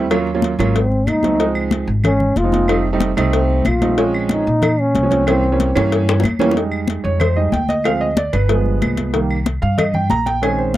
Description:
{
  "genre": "Afro-Cuban jazz",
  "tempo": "186 BPM",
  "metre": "4/4",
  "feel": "straight",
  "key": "F minor",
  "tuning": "A4 = 440 Hz",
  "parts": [
    { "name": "warm concert grand piano", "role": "accompaniment", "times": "0.0-10.8 s", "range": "Eb3 to Bb5", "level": "-19 LUFS", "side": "right 4 dB", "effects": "none" },
    { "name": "upright bass", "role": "bass", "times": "0.0-10.8 s", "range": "F1 to Bb2", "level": "-20 LUFS", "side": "equal", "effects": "none" },
    { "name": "claves", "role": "percussion", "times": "0.1-10.6 s", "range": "none", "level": "-30 LUFS", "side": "right 2 dB", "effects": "none" },
    { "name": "congas", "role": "percussion", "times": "0.1-10.8 s", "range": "none", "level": "-22 LUFS", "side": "left 3 dB", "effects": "none" },
    { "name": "cowbell and bongos", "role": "percussion", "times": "0.1-10.6 s", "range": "none", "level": "-23 LUFS", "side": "left 6 dB", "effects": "none" },
    { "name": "breathy trombone", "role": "melody", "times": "0.8-5.8 s", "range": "C4 to F4", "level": "-18 LUFS", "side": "equal", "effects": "none" }
  ],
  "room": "little or no reverb",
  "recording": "dry, close 1970s-style studio recording",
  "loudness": "-14 LUFS",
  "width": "side -14 dB against mid",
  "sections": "0.0-6.6 A section; 6.6-10.8 A section",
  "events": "trombone solo 0.0-6.6; drum fill 5.8-6.6; grand piano solo 6.6-10.8",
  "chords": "0.1 Ebm9; 0.8 Ab7b9; 1.4 Dbmaj9; 2.7 F7; 4.0 Bbm7; 5.3 C7b9; 6.6 Fm9; 7.8 Dm7b5; 8.5 G7b9; 9.1 Cm7",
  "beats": "| 0.11 0.44 0.76 1.08 | 1.40 1.73 2.05 2.37 | 2.69 3.02 3.34 3.66 | 3.98 4.31 4.63 4.95 | 5.27 5.59 5.92 6.24 | 6.56 6.88 7.21 7.53 | 7.85 8.17 8.49 8.82 | 9.14 9.46 9.78 10.11 | 10.43 10.75"
}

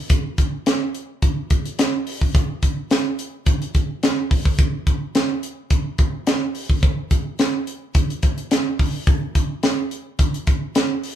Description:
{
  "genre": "funk",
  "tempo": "107 BPM",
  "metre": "4/4",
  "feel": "straight",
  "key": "none",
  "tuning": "none",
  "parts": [
    { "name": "tight funk drum kit", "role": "drums", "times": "0.1-11.2 s", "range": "hi-hat, kick drum, snare drum", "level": "-18 LUFS", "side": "equal", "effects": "none" }
  ],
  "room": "light reverb",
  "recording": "band playing live in one room",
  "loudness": "-18 LUFS",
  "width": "side -10 dB against mid",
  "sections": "0.0-11.2 A section",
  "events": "none",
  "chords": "none",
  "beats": "| 0.10 0.66 1.22 1.78 | 2.34 2.90 3.46 4.03 | 4.58 5.15 5.71 6.27 | 6.83 7.39 7.95 8.51 | 9.07 9.63 10.19 10.75"
}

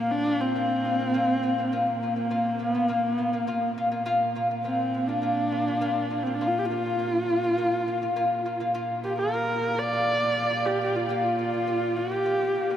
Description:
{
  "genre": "mongolian traditional",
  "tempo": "102 BPM",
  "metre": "4/4",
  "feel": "straight",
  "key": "Bb gong mode",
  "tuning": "A4 = 440 Hz",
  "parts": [
    { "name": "warm horsehead fiddle", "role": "melody", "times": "0.0-12.8 s", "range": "Bb3 to D5", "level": "-26 LUFS", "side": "right 1 dB", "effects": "none" },
    { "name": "lute", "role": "arpeggios", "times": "0.0-12.8 s", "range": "Bb3 to F4", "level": "-28 LUFS", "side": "left 2 dB", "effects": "none" },
    { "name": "warm cello", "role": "drone", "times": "0.0-12.8 s", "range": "Bb2", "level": "-34 LUFS", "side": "right 1 dB", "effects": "none" }
  ],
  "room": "wet huge ambient reverb, RT60 7.9 s",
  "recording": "in a vast, echoing space",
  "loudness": "-23 LUFS",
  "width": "side -10 dB against mid",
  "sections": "0.0-12.8 A section",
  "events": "none",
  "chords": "0.0 Bb5",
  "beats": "0.55 | 1.13 1.72 2.31 2.89 | 3.48 4.06 4.65 5.23 | 5.82 6.40 6.99 7.58 | 8.16 8.75 9.33 9.92 | 10.51 11.09 11.68 12.27"
}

